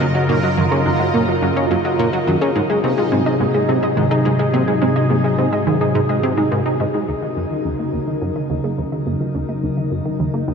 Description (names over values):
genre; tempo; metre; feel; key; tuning
ambient, sequencer-driven space music; 106 BPM; 4/4; straight; Eb dorian; A4 = 440 Hz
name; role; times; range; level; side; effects
phased analog pad; sustained chords; 0.0-10.5 s; C3 to Bb4; -19 LUFS; equal; phaser, chorus, shimmer reverb
warbly dusty pluck; arpeggios; 0.0-10.5 s; Eb3 to Eb5; -24 LUFS; moving between left 1 dB and right 7 dB; chorus, auto-pan, tape echo, shimmer reverb
plucky analog bass; riff; 0.0-10.5 s; Eb2 to Eb4; -21 LUFS; equal; analog chorus, tape echo, shimmer reverb
analog drone; bass; 0.0-7.1 s; Gb2 to Ab2; -29 LUFS; left 1 dB; chorus
bubbling stepped-filter texture; texture; 0.0-7.1 s; Eb4 to Eb5; -30 LUFS; equal; chorus, built-in reverb, shimmer reverb
room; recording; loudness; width
wet huge ambient reverb, RT60 7.2 s; dark, warm production; -16 LUFS; side -6 dB against mid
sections
0.0-7.1 A section; 7.1-10.5 B section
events
filter sweep on analog synth bass 7.1-10.5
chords
0.0 Gbmaj7; 2.6 Ab7; 7.1 Ebm7